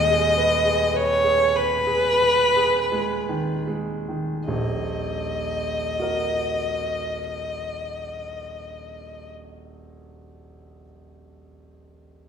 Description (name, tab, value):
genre	classical, romantic duo for violin and grand piano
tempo	37-56 BPM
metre	4/4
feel	rubato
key	Eb minor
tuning	A4 = 440 Hz
part	dark violin	melody	0.0-9.3 s	Cb5 to Eb5	-22 LUFS	equal	none
part	warm grand piano	accompaniment	0.0-12.3 s	Eb1 to Eb5	-28 LUFS	right 2 dB	none
room	wet recital hall reverb, RT60 1.4 s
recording	heard from further back in the room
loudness	-20 LUFS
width	side -7 dB against mid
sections	0.0-4.5 A section; 4.5-10.6 B section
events	slowing down 0.0-4.5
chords	0.0 Abm/Eb; 4.5 Ebm